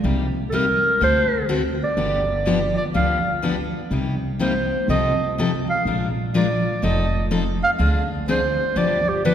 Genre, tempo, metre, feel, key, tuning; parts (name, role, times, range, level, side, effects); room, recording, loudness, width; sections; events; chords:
acoustic string swing (jazz manouche); 124 BPM; 4/4; swing 65% on 8ths; C minor; A4 = 440 Hz
picked steel-string acoustic guitar; accompaniment; 0.0-9.3 s; C3 to Bb4; -23 LUFS; left 3 dB
upright bass; bass; 0.0-9.3 s; F1 to D2; -25 LUFS; right 1 dB
warm clarinet; melody; 0.5-9.3 s; G4 to F5; -22 LUFS; right 1 dB
wet concert hall reverb, RT60 2.5 s; recorded in a church or concert hall; -18 LUFS; side -9 dB against mid
0.0-9.3 A section
0.0 Cm7; 1.0 D7; 2.0 G7; 3.9 Cm7; 4.9 F7/C; 5.9 Bb7; 6.8 F7; 7.8 Dm7b5; 8.8 G7